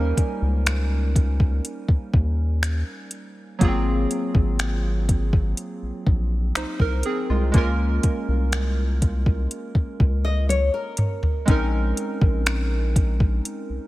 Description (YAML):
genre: contemporary R&B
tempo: 61 BPM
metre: 4/4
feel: straight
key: unclear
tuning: A4 = 439 Hz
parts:
  - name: warm analog keys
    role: accompaniment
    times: 0.0-13.9 s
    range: Gb3 to Ab5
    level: -28 LUFS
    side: right 1 dB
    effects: chorus
  - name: rubbery square bass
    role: bass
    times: 0.0-13.8 s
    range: Ab1 to Eb2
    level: -22 LUFS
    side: equal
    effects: none
  - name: smooth R&B drum kit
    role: drums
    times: 0.2-13.7 s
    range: finger snaps, hi-hat, kick drum, toms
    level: -21 LUFS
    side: equal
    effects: none
  - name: nylon-string guitar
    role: arpeggios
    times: 10.2-11.4 s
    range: Bb4 to Eb5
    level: -27 LUFS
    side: left 3 dB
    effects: tape echo
room: little or no reverb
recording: none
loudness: -20 LUFS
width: side -17 dB against mid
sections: 0.0-13.9 A section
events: drum fill 10.5-11.5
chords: 0.0 Eb7; 3.6 Ab13; 7.5 Db6; 11.5 Bbm11